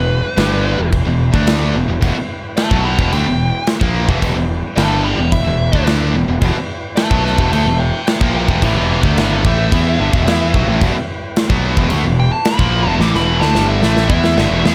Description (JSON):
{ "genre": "hard rock", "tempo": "109 BPM", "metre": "4/4", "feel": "straight", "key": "E minor", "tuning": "A4 = 443 Hz", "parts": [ { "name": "dark smooth lead guitar", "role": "melody", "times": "0.0-14.7 s", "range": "G4 to D6", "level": "-22 LUFS", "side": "equal", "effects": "overdrive, slapback echo" }, { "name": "tonewheel organ", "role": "sustained chords", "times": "0.0-14.7 s", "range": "E4 to G5", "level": "-33 LUFS", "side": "equal", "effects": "none" }, { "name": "distorted electric guitar", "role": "riff", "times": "0.0-14.7 s", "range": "E2 to E4", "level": "-24 LUFS", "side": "equal", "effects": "overdrive" }, { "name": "tight distorted guitar", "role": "riff", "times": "0.0-14.7 s", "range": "E2 to E4", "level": "-24 LUFS", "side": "equal", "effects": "distortion" }, { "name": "tight distorted guitar", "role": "riff", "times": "0.0-14.7 s", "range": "E2 to E4", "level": "-27 LUFS", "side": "equal", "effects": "distortion" }, { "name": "fuzz fingered electric bass", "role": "bass", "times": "0.0-14.7 s", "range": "E1 to E2", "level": "-20 LUFS", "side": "equal", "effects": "overdrive" }, { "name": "big rock drum kit", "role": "drums", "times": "0.4-14.7 s", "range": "crash cymbal, kick drum, snare drum", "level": "-20 LUFS", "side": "equal", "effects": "none" } ], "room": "little or no reverb", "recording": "none", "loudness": "-15 LUFS", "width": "mono", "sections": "0.0-14.7 A section", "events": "lead electric guitar solo 0.0-14.7; drum fill 13.0-14.7", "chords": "0.0 Em" }